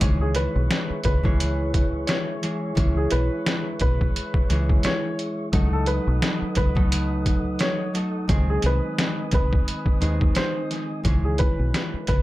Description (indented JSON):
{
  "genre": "hip hop, boom-bap hip-hop",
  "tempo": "87 BPM",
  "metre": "4/4",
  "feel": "swing 57% on 16ths",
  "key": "C# minor",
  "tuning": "A4 = 440 Hz",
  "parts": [
    { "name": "concert harp", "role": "accompaniment", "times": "0.0-12.2 s", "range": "D#3 to A4", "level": "-28 LUFS", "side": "equal", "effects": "cassette tape" },
    { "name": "mellow tonewheel organ", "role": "sustained chords", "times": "0.0-11.0 s", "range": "B#3 to D#6", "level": "-36 LUFS", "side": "left 1 dB", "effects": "fast rotary speaker" },
    { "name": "deep dub fingered electric bass", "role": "bass", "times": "0.0-12.2 s", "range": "B1 to D#2", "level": "-24 LUFS", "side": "equal", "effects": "none" },
    { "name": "trip hop sampler-style drum kit", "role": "drums", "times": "0.0-12.2 s", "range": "hi-hat, kick drum, snare drum", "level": "-23 LUFS", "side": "equal", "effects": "overdrive" },
    { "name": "warm upright piano", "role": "melody", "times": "0.2-12.2 s", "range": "G#4 to C#5", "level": "-30 LUFS", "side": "equal", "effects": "tape echo" }
  ],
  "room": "light reverb",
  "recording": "none",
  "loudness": "-20 LUFS",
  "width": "side -17 dB against mid",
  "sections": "0.0-11.1 A section; 11.1-12.2 B section",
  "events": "none",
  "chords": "0.0 C#m; 5.5 D#dim; 8.3 G#; 11.1 C#m"
}